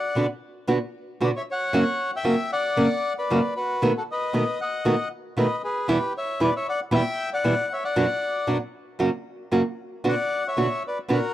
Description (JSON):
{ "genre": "tango", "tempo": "115 BPM", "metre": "4/4", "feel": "rubato", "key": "B harmonic minor", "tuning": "A4 = 439 Hz", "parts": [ { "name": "bandoneon", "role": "melody", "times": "0.0-11.3 s", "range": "F#4 to G5", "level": "-25 LUFS", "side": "left 2 dB", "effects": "none" }, { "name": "nylon-string guitar", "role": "accompaniment", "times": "0.2-11.2 s", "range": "E2 to F#4", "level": "-22 LUFS", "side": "right 1 dB", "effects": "none" } ], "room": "small room ambience", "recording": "dry, close 1970s-style studio recording", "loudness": "-22 LUFS", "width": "side -13 dB against mid", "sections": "0.0-11.3 A section", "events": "none", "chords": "0.0 Bm; 1.7 F#; 3.8 B7; 5.9 Em; 8.0 Bm/F#; 9.0 F#; 10.1 Bm" }